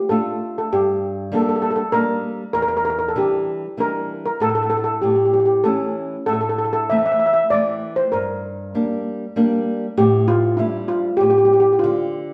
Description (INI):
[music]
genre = italian folk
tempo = 97 BPM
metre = 3/4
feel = rubato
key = unclear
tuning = A4 = 440 Hz
[part]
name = steel pan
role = melody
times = 0.0-12.3 s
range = E4 to E5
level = -20 LUFS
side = equal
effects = none
[part]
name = nylon-string guitar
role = accompaniment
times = 0.1-12.3 s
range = E2 to F4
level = -25 LUFS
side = equal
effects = none
[sound]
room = wet stone room reverb, RT60 1.3 s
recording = band playing live in one room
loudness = -19 LUFS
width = mono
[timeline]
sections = 0.0-12.3 A section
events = none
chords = 0.0 Dm; 0.7 Gm; 2.5 Em7b5; 4.4 N.C.; 5.0 A; 6.3 Am; 8.1 Gm; 10.0 A7sus4; 11.2 N.C.; 11.8 Dm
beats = 0.10 | 0.71 1.32 1.93 | 2.54 3.15 3.77 | 4.40 5.02 5.65 | 6.27 6.90 7.52 | 8.14 8.75 9.37 | 9.98 10.59 11.20 | 11.82